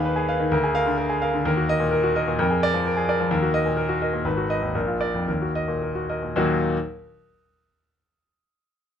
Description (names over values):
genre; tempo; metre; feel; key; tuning
classical, virtuoso piano study; 107-131 BPM; 2/4; rubato; Eb minor; A4 = 440 Hz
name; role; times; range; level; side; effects
bright concert grand piano; solo; 0.0-6.8 s; Ab1 to F5; -21 LUFS; equal; none
room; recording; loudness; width
light reverb; close, detailed microphones; -21 LUFS; side -8 dB against mid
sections
0.0-6.4 A section; 6.4-7.4 B section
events
slowing down 3.8-6.4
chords
0.0 Fm7b5/Eb; 0.5 Bb7/D; 1.5 Ebm; 2.4 Bb7/F; 3.3 Ebm; 4.3 Abm7; 4.7 Bb; 5.3 Ebm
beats
0.06 | 0.52 0.99 | 1.46 1.93 | 2.39 2.85 | 3.32 3.78 | 4.25 4.74 | 5.27 5.82 | 6.37